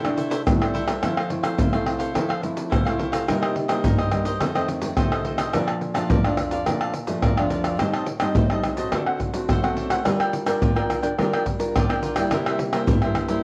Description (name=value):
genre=samba and choro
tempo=106 BPM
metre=4/4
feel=straight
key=F major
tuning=A4 = 440 Hz
part: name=cavaquinho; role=accompaniment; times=0.0-13.4 s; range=D4 to A5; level=-31 LUFS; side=equal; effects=none
part: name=nylon-string guitar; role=accompaniment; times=0.0-13.4 s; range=F2 to Bb4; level=-28 LUFS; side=equal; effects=none
part: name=egg shaker, pandeiro, tamborim and surdo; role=percussion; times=0.0-13.4 s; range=none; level=-25 LUFS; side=equal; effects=none
room=moderate large studio reverb, RT60 1.2 s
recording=worn, warbling old tape, cassette tape, warbly pitch drift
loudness=-23 LUFS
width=mono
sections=0.0-1.0 A section; 1.0-13.4 B section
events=none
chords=0.0 C69; 1.0 Fmaj7; 3.3 Cm7; 4.4 F7; 5.5 Bbmaj7; 7.8 Am7b5; 8.9 D7; 10.1 Gm7; 12.3 C7